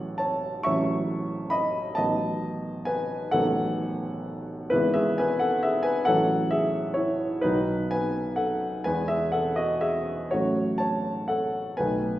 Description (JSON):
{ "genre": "classical, romantic nocturne for solo piano", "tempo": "40-46 BPM (dotted quarters)", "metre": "12/8", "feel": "rubato", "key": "unclear", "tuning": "A4 = 440 Hz", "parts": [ { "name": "warm upright piano", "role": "solo", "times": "0.0-12.2 s", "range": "G#1 to C#6", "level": "-24 LUFS", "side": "equal", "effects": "none" } ], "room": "wet recital hall reverb, RT60 1.4 s", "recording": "heard from further back in the room", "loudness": "-24 LUFS", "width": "side -14 dB against mid", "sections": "0.0-12.2 A section", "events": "none", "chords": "0.0 F#m7/A; 2.0 B7/A; 4.7 E/G#; 6.1 F#m7/A; 7.4 B; 8.9 E; 10.3 F#m/A", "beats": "0.64 1.97 3.33 | 4.71 6.07 7.44 8.86 | 10.31 11.78" }